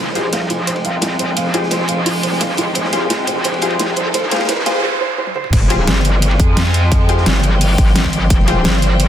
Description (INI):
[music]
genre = dark technical drum and bass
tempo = 173 BPM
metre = 4/4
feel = straight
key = F minor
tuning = A4 = 437 Hz
[part]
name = dark studio string section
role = sustained chords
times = 0.0-9.1 s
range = F3 to G5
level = -21 LUFS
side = equal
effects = sidechain pumping, low-pass filter
[part]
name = felt-muted upright piano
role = arpeggios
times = 0.0-5.5 s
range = F4 to F5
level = -23 LUFS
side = right 3 dB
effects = sidechain pumping, digital delay
[part]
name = metallic wobble bass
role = bass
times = 0.0-9.1 s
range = Eb1 to F2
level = -18 LUFS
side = equal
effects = chorus, overdrive, sidechain pumping, high-pass filter
[part]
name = riser and noise sweep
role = sound effects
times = 0.0-5.5 s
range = none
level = -25 LUFS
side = right 3 dB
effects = none
[part]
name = crunchy breakbeat drum kit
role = drums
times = 0.1-9.1 s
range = hi-hat, ride cymbal, snare drum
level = -26 LUFS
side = equal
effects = high-pass filter on cymbals, high-pass filter on hats, high-pass filter on snare, high-pass filter on room
[part]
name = orchestra-hit-like synth stab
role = stabs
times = 0.2-9.1 s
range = F4 to C5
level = -23 LUFS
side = left 3 dB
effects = built-in reverb, digital delay
[part]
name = dubstep drum kit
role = drums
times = 0.2-9.1 s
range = crash cymbal, hi-hat, snare drum, toms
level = -19 LUFS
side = equal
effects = overdrive
[part]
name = electronic kick drum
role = drums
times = 5.5-8.4 s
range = none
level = -15 LUFS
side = equal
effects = overdrive
[sound]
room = light reverb, small room ambience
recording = dense, heavily limited modern master, high-pass filter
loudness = -13 LUFS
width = side -10 dB against mid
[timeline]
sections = 0.0-5.5 A section; 5.5-9.1 B section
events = build-up 0.0-5.5; riser 0.0-4.8; noise sweep 4.1-5.5; break 4.8-5.5; drum fill 5.3; drop 5.5-9.1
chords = 0.0 Fmadd9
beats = 0.33 0.67 1.02 | 1.37 1.71 2.06 2.41 | 2.75 3.10 3.45 3.79 | 4.14 4.49 4.83 5.18 | 5.53 5.88 6.22 6.57 | 6.92 7.26 7.61 7.96 | 8.30 8.65 9.00